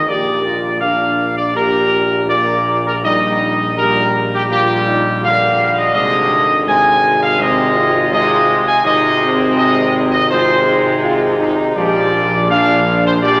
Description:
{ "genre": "classical", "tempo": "82 BPM", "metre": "4/4", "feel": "straight", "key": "Ab lydian", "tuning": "A4 = 440 Hz", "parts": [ { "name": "mellow trumpet section", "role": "melody", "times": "0.0-13.4 s", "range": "G4 to Ab5", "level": "-17 LUFS", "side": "equal", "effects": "none" }, { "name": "mellow French horn section", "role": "sustained chords", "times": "0.0-13.4 s", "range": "D3 to G4", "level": "-22 LUFS", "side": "equal", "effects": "none" }, { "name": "mellow trombone section", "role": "sustained chords", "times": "0.0-13.4 s", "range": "Bb2 to Bb3", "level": "-23 LUFS", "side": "equal", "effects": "none" }, { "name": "warm tuba", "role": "bass", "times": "0.1-13.4 s", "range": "Ab1 to Bb1", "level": "-23 LUFS", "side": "equal", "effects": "none" } ], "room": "wet church reverb, RT60 3.0 s", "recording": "none", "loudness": "-14 LUFS", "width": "mono", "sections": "0.0-13.4 A section", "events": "none", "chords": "0.1 Bb; 3.0 Eb/Bb; 5.9 Ab; 11.8 Bb", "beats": "| 0.09 0.82 1.55 2.28 | 3.03 3.77 4.50 5.22 | 5.95 6.67 7.39 8.11 | 8.84 9.57 10.30 11.03 | 11.77 12.50 13.24" }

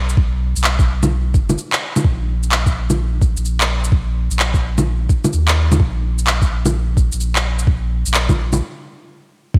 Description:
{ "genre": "future garage", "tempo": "128 BPM", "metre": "4/4", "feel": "swing 64% on 16ths", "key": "unclear", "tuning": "A4 = 441 Hz", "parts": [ { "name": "soft dub sub bass", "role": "bass", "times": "0.0-9.6 s", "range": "F#1 to Eb2", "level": "-21 LUFS", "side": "equal", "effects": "sidechain pumping" }, { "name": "electronic shaker, handclaps and bongos", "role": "drums", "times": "0.1-8.6 s", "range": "none", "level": "-22 LUFS", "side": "equal", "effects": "small room ambience, gated reverb" }, { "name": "electronic kick drum", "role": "drums", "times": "0.2-9.6 s", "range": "none", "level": "-17 LUFS", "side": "equal", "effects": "small room ambience" } ], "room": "little or no reverb", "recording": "bright 1980s-style digital production", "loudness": "-17 LUFS", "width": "mono", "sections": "0.0-9.6 A section", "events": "stop 8.6-9.6", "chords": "none", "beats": "| 0.18 0.64 1.11 1.58 | 2.05 2.52 2.99 3.46 | 3.93 4.39 4.86 5.33 | 5.80 6.27 6.74 7.21 | 7.68 8.14 8.61 9.08 | 9.55" }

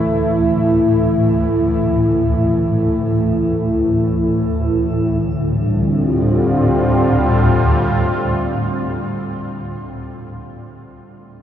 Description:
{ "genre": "dark ambient drone", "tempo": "free time", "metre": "none", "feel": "none", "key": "unclear", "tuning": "A4 = 444 Hz", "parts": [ { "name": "sweeping resonant pad", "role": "sustained chords", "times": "0.0-9.7 s", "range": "D3 to F4", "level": "-16 LUFS", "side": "equal", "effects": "chorus, shimmer reverb" }, { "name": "swarming drone", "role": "drone", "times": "0.0-9.8 s", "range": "D2 to A2", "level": "-20 LUFS", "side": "left 1 dB", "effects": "built-in reverb" } ], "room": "wet huge ambient reverb, RT60 7.6 s", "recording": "cassette tape", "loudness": "-14 LUFS", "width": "side -10 dB against mid", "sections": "0.0-5.2 A section; 5.2-8.9 B section", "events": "none", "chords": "0.0 Dsus2; 5.2 Dm", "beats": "free time" }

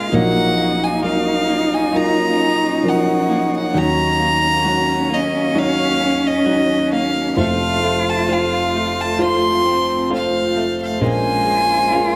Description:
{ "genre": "acoustic folk-pop ballad", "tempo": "66 BPM", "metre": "4/4", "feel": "straight", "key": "unclear", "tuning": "A4 = 440 Hz", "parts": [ { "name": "clear violin", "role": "melody", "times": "0.0-12.2 s", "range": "Eb5 to C6", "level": "-22 LUFS", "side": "equal", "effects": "none" }, { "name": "rich cello", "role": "second line", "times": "0.0-12.2 s", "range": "Db4 to F4", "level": "-24 LUFS", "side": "equal", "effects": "none" }, { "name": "dark grand piano", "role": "accompaniment", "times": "0.0-12.2 s", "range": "F1 to Db5", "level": "-23 LUFS", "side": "equal", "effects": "none" }, { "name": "warm chamber string section", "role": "sustained chords", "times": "0.0-12.2 s", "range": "Eb2 to Db5", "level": "-32 LUFS", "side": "equal", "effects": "none" }, { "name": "electric guitar through a small old amp", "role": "arpeggios", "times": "0.0-12.2 s", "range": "Eb3 to Gb4", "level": "-26 LUFS", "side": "equal", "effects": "tremolo" } ], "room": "wet recital hall reverb, RT60 1.8 s", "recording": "none", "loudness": "-17 LUFS", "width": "mono", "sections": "0.0-12.2 A section", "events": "none", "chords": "0.1 Gbmaj7/Bb; 3.7 Ebm7; 7.4 F; 11.0 Bbm7", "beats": "| 0.12 1.03 1.93 2.84 | 3.75 4.66 5.56 6.47 | 7.38 8.28 9.19 10.10 | 11.01 11.93" }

